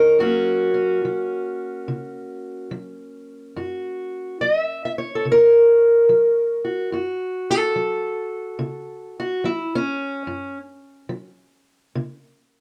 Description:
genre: acoustic country blues, solo or duo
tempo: 71 BPM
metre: 4/4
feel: swing 65% on 8ths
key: F# mixolydian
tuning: A4 = 439 Hz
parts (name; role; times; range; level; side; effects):
- fingerpicked steel-string acoustic guitar; solo; 0.0-12.6 s; F#2 to E5; -21 LUFS; equal; none
room: moderate studio reverb, RT60 0.6 s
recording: none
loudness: -21 LUFS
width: mono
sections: 0.0-6.9 A section; 6.9-12.6 B section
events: steel-string acoustic guitar solo 6.9-12.6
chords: 0.2 F#; 6.9 F#5

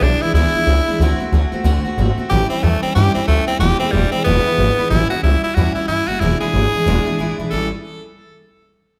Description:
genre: rockabilly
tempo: 184 BPM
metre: 4/4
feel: swing 61% on 8ths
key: unclear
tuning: A4 = 440 Hz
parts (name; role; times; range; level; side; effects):
- raspy tenor saxophone; melody; 0.0-7.7 s; G3 to A4; -22 LUFS; equal; digital delay
- picked steel-string acoustic guitar; accompaniment; 0.0-7.7 s; E2 to F#4; -24 LUFS; equal; none
- upright bass; bass; 0.0-7.7 s; E1 to G2; -20 LUFS; equal; none
room: moderate recital hall reverb, RT60 1.5 s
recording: none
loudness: -17 LUFS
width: mono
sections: 0.0-4.9 A section; 4.9-7.5 B section; 7.5-8.8 C section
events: none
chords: 0.0 E7; 1.0 D7; 2.3 A7; 3.6 E7; 4.9 A7; 6.2 E7; 7.5 A7

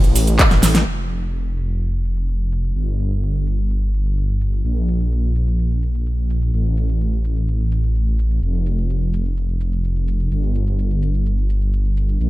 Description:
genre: EDM, festival progressive house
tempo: 127 BPM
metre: 4/4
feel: straight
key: F major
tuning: A4 = 439 Hz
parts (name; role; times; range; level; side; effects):
- wide detuned saw bass; bass; 0.0-12.3 s; F1 to Bb1; -18 LUFS; equal; chorus, sidechain pumping
- pop drum kit; drums; 0.0-12.3 s; crash cymbal, handclaps, hi-hat, ride cymbal, shaker, snare drum; -18 LUFS; equal; low-pass filter on hats, studio reverb, low-pass filter on perc, low-pass filter on cymbals, low-pass filter on snare
- electronic kick drum; drums; 0.4-0.5 s; none; -14 LUFS; equal; studio reverb
room: digital ambience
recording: none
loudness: -17 LUFS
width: side -18 dB against mid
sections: 0.9-12.3 A section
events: drum fill 0.5-0.9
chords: none

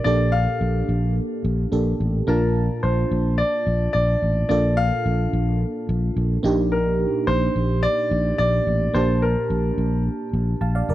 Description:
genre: 1980s-style pop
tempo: 108 BPM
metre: 4/4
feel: straight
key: Bb major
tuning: A4 = 440 Hz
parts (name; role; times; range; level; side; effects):
- warm grand piano; melody; 0.0-10.0 s; Bb4 to F5; -24 LUFS; left 1 dB; none
- FM electric piano; accompaniment; 0.0-10.9 s; Bb2 to A5; -25 LUFS; right 2 dB; chorus
- fretless electric bass; bass; 0.1-10.9 s; Gb1 to Bb1; -22 LUFS; equal; none
room: small room reverb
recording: dry, close 1970s-style studio recording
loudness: -19 LUFS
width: side -14 dB against mid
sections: 0.0-10.9 A section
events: none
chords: 0.1 Gmadd9/Bb; 2.3 Bbmaj7; 6.4 Ebmaj7/Bb; 8.9 Gmadd9/Bb

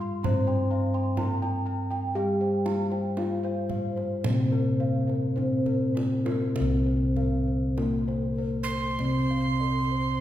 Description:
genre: Javanese gamelan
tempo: 49-66 BPM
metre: 4/4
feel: straight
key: C slendro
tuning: A4 = 440 Hz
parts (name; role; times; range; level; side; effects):
- gamelan-type bronze metallophone; melody; 0.0-10.2 s; Bb3-40c to C5; -29 LUFS; left 1 dB; none
- gamelan-type bronze metallophone; accompaniment; 0.0-10.2 s; C3 to C4; -30 LUFS; right 1 dB; none
- gamelan-type bossed gongs; arpeggios; 0.0-9.9 s; Bb4-40c to C6; -36 LUFS; left 6 dB; none
- gamelan-type bronze metallophone; arpeggios; 0.0-10.2 s; Bb4-40c to C6; -37 LUFS; right 4 dB; none
- gamelan-type bossed gongs; bass; 0.0-10.2 s; C2 to G4+20c; -30 LUFS; left 1 dB; none
- kendang; percussion; 0.2-9.3 s; none; -36 LUFS; right 3 dB; none
- breathy mellow tenor recorder; second line; 8.6-10.2 s; C6; -30 LUFS; right 5 dB; none
room: wet recital hall reverb, RT60 1.6 s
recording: recorded in a church or concert hall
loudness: -24 LUFS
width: side -12 dB against mid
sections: 0.0-6.6 A section; 6.6-10.2 B section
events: drum fill 5.4-6.6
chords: none

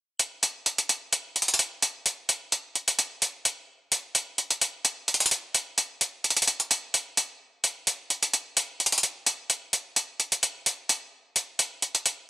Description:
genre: hip hop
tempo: 129 BPM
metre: 4/4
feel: half-time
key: none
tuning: none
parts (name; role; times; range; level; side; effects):
- electronic hi-hat; drums; 0.2-12.2 s; none; -23 LUFS; equal; none
room: light reverb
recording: dry, gritty hardware recording, cassette tape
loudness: -24 LUFS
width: side -20 dB against mid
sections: 0.2-12.3 A section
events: none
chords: none

